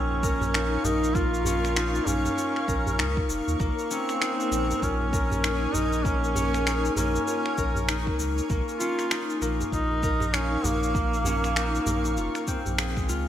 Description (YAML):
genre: organic downtempo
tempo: 98 BPM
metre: 4/4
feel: swing 60% on 16ths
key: unclear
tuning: A4 = 440 Hz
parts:
  - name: clear duduk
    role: melody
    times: 0.0-12.8 s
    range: Bb3 to F4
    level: -29 LUFS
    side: right 2 dB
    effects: digital delay
  - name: granular cloud pad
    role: sustained chords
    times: 0.0-13.3 s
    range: Bb4 to Db6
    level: -34 LUFS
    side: left 1 dB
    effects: built-in reverb, sidechain pumping
  - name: concert harp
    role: arpeggios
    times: 0.0-13.3 s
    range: Ab3 to Bb4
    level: -30 LUFS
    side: left 3 dB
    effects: digital delay
  - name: warm sub bass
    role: bass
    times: 0.0-13.3 s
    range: F1 to Eb2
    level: -29 LUFS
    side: equal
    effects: none
  - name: djembe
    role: percussion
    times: 0.1-12.8 s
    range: none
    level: -36 LUFS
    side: right 2 dB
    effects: none
  - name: electronic cabasa and finger snaps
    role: drums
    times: 0.2-13.2 s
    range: none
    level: -32 LUFS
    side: left 1 dB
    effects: small room ambience
  - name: electronic kick drum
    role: drums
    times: 0.2-13.1 s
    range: none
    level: -29 LUFS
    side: equal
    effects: small room ambience
room: moderate lush hall reverb, RT60 2.1 s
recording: bright 1980s-style digital production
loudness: -23 LUFS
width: side -11 dB against mid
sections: 0.0-13.3 A section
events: none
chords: 0.0 Db6/Bb; 3.6 Bbm7; 8.5 Db6/Bb